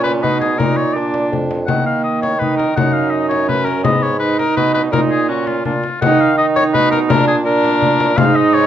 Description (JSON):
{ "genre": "classical, renaissance-style consort dance", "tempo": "167 BPM", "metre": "3/4", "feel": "straight", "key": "unclear", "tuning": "A4 = 441 Hz", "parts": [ { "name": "clear oboe", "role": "melody", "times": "0.0-8.7 s", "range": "F4 to Gb5", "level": "-18 LUFS", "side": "left 4 dB", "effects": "none" }, { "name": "warm viola", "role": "second line", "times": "0.0-8.7 s", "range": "Bb3 to D#4", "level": "-18 LUFS", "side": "right 5 dB", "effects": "none" }, { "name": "warm bassoon", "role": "bass", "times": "0.0-8.7 s", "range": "F2 to Eb3", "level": "-19 LUFS", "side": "right 1 dB", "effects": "none" }, { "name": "frame drum", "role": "percussion", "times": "0.1-8.3 s", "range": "none", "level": "-21 LUFS", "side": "left 5 dB", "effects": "none" } ], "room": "light reverb", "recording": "worn, warbling old tape, cassette tape, warbly pitch drift", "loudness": "-13 LUFS", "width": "side -10 dB against mid", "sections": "0.0-6.0 A section; 6.0-8.7 A section", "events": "none", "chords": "0.0 Abm; 0.6 Bbsus4; 1.0 Bb; 1.7 Eb5; 2.8 Gb5; 3.8 Abm; 4.9 Bbsus4; 6.0 B; 7.1 Bb" }